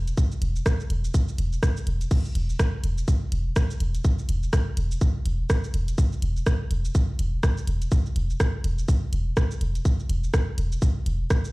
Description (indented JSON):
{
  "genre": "minimal techno",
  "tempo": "124 BPM",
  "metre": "4/4",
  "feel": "swing 59% on 16ths",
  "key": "unclear",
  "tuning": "A4 = 440 Hz",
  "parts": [
    { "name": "punchy sub bass", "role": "bass", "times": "0.0-11.3 s", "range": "E1", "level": "-24 LUFS", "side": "equal", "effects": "sidechain pumping" },
    { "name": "garage drum kit", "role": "drums", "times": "0.1-11.5 s", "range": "crash cymbal, hi-hat, rim click, shaker", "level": "-33 LUFS", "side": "right 1 dB", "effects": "none" },
    { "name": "electronic kick drum", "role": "drums", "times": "0.2-11.4 s", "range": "none", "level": "-21 LUFS", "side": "equal", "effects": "none" }
  ],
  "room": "little or no reverb",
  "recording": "played on a big sound system in a bare room, large studio reverb",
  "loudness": "-22 LUFS",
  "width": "side -23 dB against mid",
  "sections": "0.0-11.5 A section",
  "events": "none",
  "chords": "none"
}